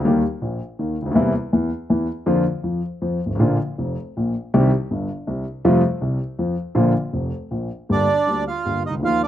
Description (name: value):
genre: tango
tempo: 160 BPM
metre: 3/4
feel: rubato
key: Bb major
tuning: A4 = 439 Hz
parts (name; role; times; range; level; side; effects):
- dark grand piano; accompaniment; 0.0-9.2 s; F1 to G4; -19 LUFS; left 1 dB; none
- bandoneon; melody; 7.9-9.3 s; D4 to F5; -20 LUFS; right 4 dB; none
room: light reverb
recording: recorded outdoors, with no room sound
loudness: -19 LUFS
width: side -11 dB against mid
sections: 0.0-7.9 A section; 7.9-9.3 B section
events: none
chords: 0.1 Eb; 1.2 C7/E; 2.3 Bb/F; 3.0 N.C.; 3.4 Bb; 4.5 Cm; 5.6 Fadd9; 6.8 Bb; 7.9 Gm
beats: | 0.05 0.42 0.80 | 1.16 1.53 1.90 | 2.27 2.65 3.02 | 3.40 3.78 4.16 | 4.54 4.91 5.28 | 5.64 6.01 6.38 | 6.76 7.13 7.52 | 7.90 8.28 8.66 | 9.04